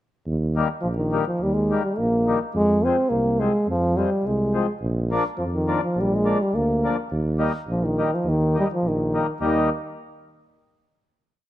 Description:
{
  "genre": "alpine folk, alpine dance band",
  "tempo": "105 BPM",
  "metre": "2/4",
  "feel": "straight",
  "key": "Eb major",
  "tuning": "A4 = 440 Hz",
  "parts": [
    { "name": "warm tuba", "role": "bass", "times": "0.3-9.7 s", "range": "Bb1 to F2", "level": "-26 LUFS", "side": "right 1 dB", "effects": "none" },
    { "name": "mellow accordion", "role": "accompaniment", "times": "0.6-9.7 s", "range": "Eb3 to Eb4", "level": "-27 LUFS", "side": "left 3 dB", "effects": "none" },
    { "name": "clear euphonium", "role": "melody", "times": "0.8-9.7 s", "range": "Eb3 to C4", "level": "-22 LUFS", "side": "equal", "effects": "none" }
  ],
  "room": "light reverb",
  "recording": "close, detailed microphones",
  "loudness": "-20 LUFS",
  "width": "side -14 dB against mid",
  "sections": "0.3-9.4 A section; 9.4-10.6 final chord",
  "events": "none",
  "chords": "0.3 Eb; 2.5 Fm; 4.8 Bb; 7.1 Eb"
}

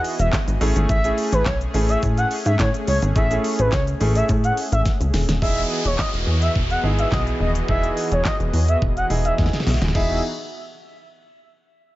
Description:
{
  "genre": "dance-pop",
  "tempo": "106 BPM",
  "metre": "4/4",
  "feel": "straight",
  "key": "E major",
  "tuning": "A4 = 440 Hz",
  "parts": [
    { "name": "clear baby grand piano", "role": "accompaniment", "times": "0.0-10.2 s", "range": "A3 to G#4", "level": "-27 LUFS", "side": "right 1 dB", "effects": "none" },
    { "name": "warm analog pad", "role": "sustained chords", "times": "0.0-10.2 s", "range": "E3 to D#5", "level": "-29 LUFS", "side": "equal", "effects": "chorus, tremolo, sidechain pumping" },
    { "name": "pop drum kit", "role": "drums", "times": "0.0-10.1 s", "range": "crash cymbal, handclaps, hi-hat, kick drum, shaker, snare drum", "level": "-24 LUFS", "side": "equal", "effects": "none" },
    { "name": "expressive portamento lead", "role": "melody", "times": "0.2-10.2 s", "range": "B4 to F#5", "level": "-25 LUFS", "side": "equal", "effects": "chorus, sidechain pumping, digital delay" },
    { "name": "plucky analog bass", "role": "bass", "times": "0.2-10.2 s", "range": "D#1 to A2", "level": "-21 LUFS", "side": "equal", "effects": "sidechain pumping" },
    { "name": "downlifter", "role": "sound effects", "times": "5.4-9.9 s", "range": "none", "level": "-31 LUFS", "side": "equal", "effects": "none" }
  ],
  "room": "digital ambience",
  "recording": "nothing above 7.7 kHz",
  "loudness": "-18 LUFS",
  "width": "side -16 dB against mid",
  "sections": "0.0-5.4 A section; 5.4-9.9 B section; 9.9-12.0 C section",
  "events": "drop 0.0-5.4; drum fill 4.9-5.4, 9.4-9.9",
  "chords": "0.0 Emaj7; 0.6 Amaj7; 5.4 Emaj7"
}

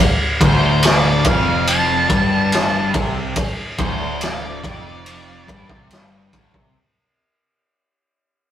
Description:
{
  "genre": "stoner and doom metal",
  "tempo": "71 BPM",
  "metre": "4/4",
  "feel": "straight",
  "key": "D minor",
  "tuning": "A4 = 437 Hz",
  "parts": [
    { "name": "fuzz guitar", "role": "riff", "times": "0.4-6.7 s", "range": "D2 to C3", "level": "-19 LUFS", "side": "left 1 dB", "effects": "distortion" },
    { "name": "growling picked electric bass", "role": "bass", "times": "0.4-6.7 s", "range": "D1 to C2", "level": "-28 LUFS", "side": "equal", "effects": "overdrive" },
    { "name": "raw garage drum kit", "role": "drums", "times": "0.4-6.7 s", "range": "kick drum, ride cymbal, snare drum", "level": "-18 LUFS", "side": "equal", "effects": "none" },
    { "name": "octave-fuzz lead guitar", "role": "melody", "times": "0.5-5.9 s", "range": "C5 to A5", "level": "-22 LUFS", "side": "right 1 dB", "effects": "distortion" }
  ],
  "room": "moderate stone room reverb, RT60 1.4 s",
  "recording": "rough rehearsal-room recording",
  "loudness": "-14 LUFS",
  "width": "side -11 dB against mid",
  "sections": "0.0-6.8 A section",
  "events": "fade-out 0.0-6.8",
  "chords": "0.0 Dm"
}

